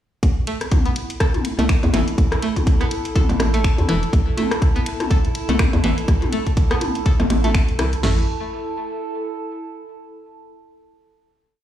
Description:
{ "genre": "minimal techno", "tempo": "123 BPM", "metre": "4/4", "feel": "swing 57% on 16ths", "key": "unclear", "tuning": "A4 = 440 Hz", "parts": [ { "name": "hollow knocking FM bass", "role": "bass", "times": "0.2-8.3 s", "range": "E1 to E2", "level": "-20 LUFS", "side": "equal", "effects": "tube saturation, sidechain pumping" }, { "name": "house drum kit", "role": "drums", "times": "0.2-8.2 s", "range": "crash cymbal, kick drum, snare drum, toms", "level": "-17 LUFS", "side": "equal", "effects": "none" }, { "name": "house drum kit", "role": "drums", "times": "0.2-8.0 s", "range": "finger snaps, hi-hat", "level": "-30 LUFS", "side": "equal", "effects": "none" }, { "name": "warbly tape-like pad", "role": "texture", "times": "1.0-9.9 s", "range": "E4 to A5", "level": "-29 LUFS", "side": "right 2 dB", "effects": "chorus, built-in reverb, phaser, sidechain pumping" }, { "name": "string-like resonator pluck", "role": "riff", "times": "0.5-8.3 s", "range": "E3 to A4", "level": "-27 LUFS", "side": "equal", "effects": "chorus, phaser, sidechain pumping, ping-pong delay" }, { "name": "techno drum kit", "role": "percussion", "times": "0.6-7.9 s", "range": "percussion blips, rim click, toms", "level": "-24 LUFS", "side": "left 1 dB", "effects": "ping-pong delay" } ], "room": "light reverb", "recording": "played on a big sound system in a bare room, stone room reverb", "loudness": "-17 LUFS", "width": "side -11 dB against mid", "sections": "0.2-8.0 drop; 8.0-10.0 final chord", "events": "drop 0.2-8.0", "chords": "0.2 A5" }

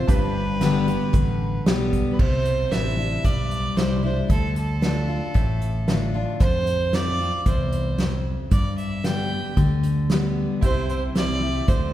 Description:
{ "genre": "honky-tonk and classic country", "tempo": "114 BPM", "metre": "4/4", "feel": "straight", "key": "C major", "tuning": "A4 = 439 Hz", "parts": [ { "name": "clear fiddle", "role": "melody", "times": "0.0-11.9 s", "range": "A4 to G5", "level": "-28 LUFS", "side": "right 2 dB", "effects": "none" }, { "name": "picked steel-string acoustic guitar", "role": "accompaniment", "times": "0.0-11.9 s", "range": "E2 to G4", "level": "-26 LUFS", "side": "left 3 dB", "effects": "none" }, { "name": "tack piano", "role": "accompaniment", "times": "0.0-2.2, 10.6-11.9 s", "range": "D4 to C5", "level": "-35 LUFS", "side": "right 3 dB", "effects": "none" }, { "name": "fingered electric bass", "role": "bass", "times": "0.1-11.9 s", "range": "G1 to G2", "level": "-26 LUFS", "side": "equal", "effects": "none" }, { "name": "unplugged drum kit", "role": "drums", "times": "0.1-11.8 s", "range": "crash cymbal, hi-hat, kick drum, snare drum", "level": "-24 LUFS", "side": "equal", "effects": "none" } ], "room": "wet concert hall reverb, RT60 2.3 s", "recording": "recorded in a church or concert hall", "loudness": "-20 LUFS", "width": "side -13 dB against mid", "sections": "0.0-2.2 A section; 2.2-11.9 B section", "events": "none", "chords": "0.1 G; 2.2 Cadd9; 4.3 Dm; 6.4 F5; 8.5 G; 10.6 C" }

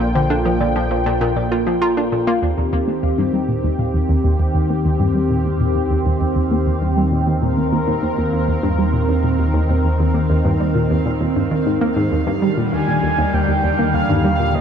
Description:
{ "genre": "ambient, sequencer-driven space music", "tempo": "99 BPM", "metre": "4/4", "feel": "straight", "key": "Eb major", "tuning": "A4 = 440 Hz", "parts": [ { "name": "lush unison pad", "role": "sustained chords", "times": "0.0-14.6 s", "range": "D3 to G5", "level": "-20 LUFS", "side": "equal", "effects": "chorus, phaser" }, { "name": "thumb-piano-like synth pluck", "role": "arpeggios", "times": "0.0-2.4 s", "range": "Bb3 to Bb5", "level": "-26 LUFS", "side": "left 1 dB", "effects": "chorus, auto-pan, tape echo" }, { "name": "analog pluck", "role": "riff", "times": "0.0-14.6 s", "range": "Eb2 to F4", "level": "-19 LUFS", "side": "equal", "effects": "chorus, tape echo" }, { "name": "fat analog bass", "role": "bass", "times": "0.0-14.6 s", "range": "Bb1 to Eb2", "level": "-23 LUFS", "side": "equal", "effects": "none" }, { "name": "bubbling stepped-filter texture", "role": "texture", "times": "3.8-14.6 s", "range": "F5", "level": "-35 LUFS", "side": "right 6 dB", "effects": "chorus, built-in reverb" }, { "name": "breathy flute-like synth lead", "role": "melody", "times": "12.7-14.6 s", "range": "Eb5 to Ab5", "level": "-21 LUFS", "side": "right 2 dB", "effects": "analog chorus, tape echo" } ], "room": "moderate plate reverb, RT60 3.5 s", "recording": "dark, warm production", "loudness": "-16 LUFS", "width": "side -8 dB against mid", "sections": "0.0-2.4 A section; 2.4-14.6 B section", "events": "filter sweep on synth arpeggio sound 0.0-2.4; fade-in on synth texture 2.4-14.6", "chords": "0.0 Bb6; 2.4 Eb6" }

